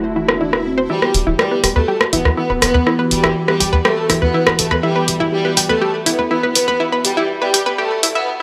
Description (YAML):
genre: melodic techno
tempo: 122 BPM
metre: 4/4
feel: straight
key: E minor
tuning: A4 = 440 Hz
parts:
  - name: mellow synth brass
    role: melody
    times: 0.0-8.3 s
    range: C4 to B4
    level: -24 LUFS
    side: equal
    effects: chorus, tape echo
  - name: evolving wavetable pad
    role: sustained chords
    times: 0.0-8.2 s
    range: D3 to G4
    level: -27 LUFS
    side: equal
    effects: phaser, built-in reverb, vintage 12-bit sampler grit
  - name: tight sequencer bass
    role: bass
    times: 0.0-8.2 s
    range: E1 to E2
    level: -24 LUFS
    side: equal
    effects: none
  - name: swell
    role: sound effects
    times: 0.1-0.9 s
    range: none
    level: -30 LUFS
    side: equal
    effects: none
  - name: analog pluck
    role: arpeggios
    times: 0.2-8.4 s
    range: E4 to E5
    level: -21 LUFS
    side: equal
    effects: chorus, digital delay
  - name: punchy analog drum machine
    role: drums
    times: 0.3-8.1 s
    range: hi-hat, rim click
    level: -18 LUFS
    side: equal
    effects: low-pass filter on snare, low-pass filter on hats, low-pass filter on room
  - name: bright studio violin section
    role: second line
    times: 0.9-8.3 s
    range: G3 to B3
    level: -26 LUFS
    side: equal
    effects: digital delay
room: wet recital hall reverb, RT60 1.4 s, digital ambience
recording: high-pass filter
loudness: -16 LUFS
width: mono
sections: 0.9-8.4 A section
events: swell 0.1-0.9; build-up 0.9-8.4; filter sweep 0.9-8.4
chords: 0.0 D/E; 0.9 Em